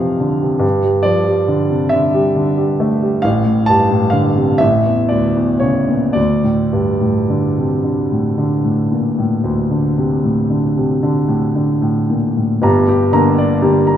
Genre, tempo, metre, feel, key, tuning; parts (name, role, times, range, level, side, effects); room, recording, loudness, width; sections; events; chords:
classical, romantic nocturne for solo piano; 35-49 BPM (dotted quarters); 12/8; rubato; A4 = 440 Hz
warm grand piano; solo; 0.0-14.0 s; G1 to Bb5; -13 LUFS; equal
wet recital hall reverb, RT60 1.7 s; minimal, uncompressed stereo recording; -13 LUFS; side -10 dB against mid
0.0-12.6 A section; 12.6-14.0 B section
0.0 F; 0.6 G5; 3.2 D5/A; 4.6 A; 6.2 D5; 12.6 Gm